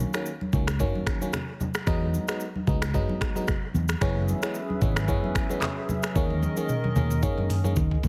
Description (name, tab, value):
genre	afrobeats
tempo	112 BPM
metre	4/4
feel	swing 55% on 16ths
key	B major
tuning	A4 = 440 Hz
part	barking FM electric piano	accompaniment	0.0-7.8 s	D#3 to D#4	-34 LUFS	equal	chorus
part	fingered electric bass	bass	0.0-8.1 s	F#1 to D#3	-28 LUFS	equal	none
part	afro-pop drum kit	drums	0.0-8.1 s	finger snaps, handclaps, hi-hat, kick drum, rim click, shaker, toms	-30 LUFS	equal	none
part	congas	percussion	0.0-8.1 s	none	-36 LUFS	equal	none
part	hollow soft pad	sustained chords	4.0-8.1 s	D#3 to E5	-36 LUFS	equal	chorus
room	little or no reverb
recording	heavily compressed radio sound, multiband compression, faint mains hum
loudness	-26 LUFS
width	mono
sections	0.0-8.1 A section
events	drum fill 6.2-8.1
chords	0.0 Bmaj9 (rootless); 1.9 Emaj7; 4.0 F#7sus4; 6.2 D#7sus4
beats	0.26 0.80 1.33 | 1.87 2.41 2.94 3.48 | 4.01 4.55 5.08 5.62 | 6.16 6.69 7.23 7.76